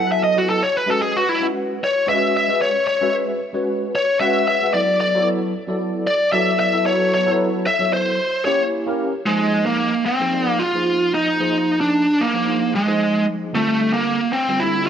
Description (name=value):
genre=jazz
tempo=113 BPM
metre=4/4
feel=straight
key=C# minor, F dorian from 9.3 s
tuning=A4 = 440 Hz
part: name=bluesy overdriven lead guitar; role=melody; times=0.0-14.9 s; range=Ab3 to E5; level=-18 LUFS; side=equal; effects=distortion
part: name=bright tine electric piano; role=accompaniment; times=0.0-14.9 s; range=D3 to F#5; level=-23 LUFS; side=equal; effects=medium stereo tremolo, ensemble chorus
room=moderate plate reverb, RT60 3.6 s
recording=none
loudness=-17 LUFS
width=side -8 dB against mid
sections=0.0-9.3 A section; 9.3-14.9 B section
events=lead electric guitar solo 0.0-9.3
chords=0.0 F#m7; 0.8 C#m11; 4.7 E9sus4; 6.9 F#m7; 8.2 A#dim7; 9.3 Fm7; 13.5 Gm9